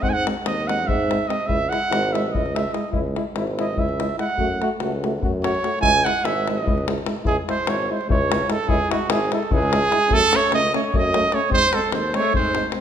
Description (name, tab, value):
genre	balkan folk, Balkan brass band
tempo	293 BPM (eighths)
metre	7/8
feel	straight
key	C# harmonic minor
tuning	A4 = 440 Hz
part	warm trumpet	melody	0.0-12.7 s	F#4 to G#5	-21 LUFS	right 3 dB	none
part	bright trombone	accompaniment	0.0-12.8 s	B#3 to F#4	-30 LUFS	left 7 dB	none
part	warm euphonium	accompaniment	0.0-12.8 s	G#3 to A3	-28 LUFS	right 4 dB	none
part	warm tuba	bass	0.0-12.6 s	G#1 to G#2	-27 LUFS	equal	none
part	davul	percussion	0.0-12.8 s	none	-26 LUFS	left 3 dB	none
part	clear alto saxophone	second line	12.2-12.7 s	G#3 to A3	-27 LUFS	left 6 dB	none
room	wet recital hall reverb, RT60 1.6 s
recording	minimal, uncompressed stereo recording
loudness	-18 LUFS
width	side -9 dB against mid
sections	0.0-7.3 A section; 7.3-12.8 B section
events	speeding up 0.0-12.8; trumpet solo 0.0-7.3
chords	0.0 G#; 1.5 C#m; 4.4 F#m; 5.8 C#m; 10.1 F#m; 11.5 G#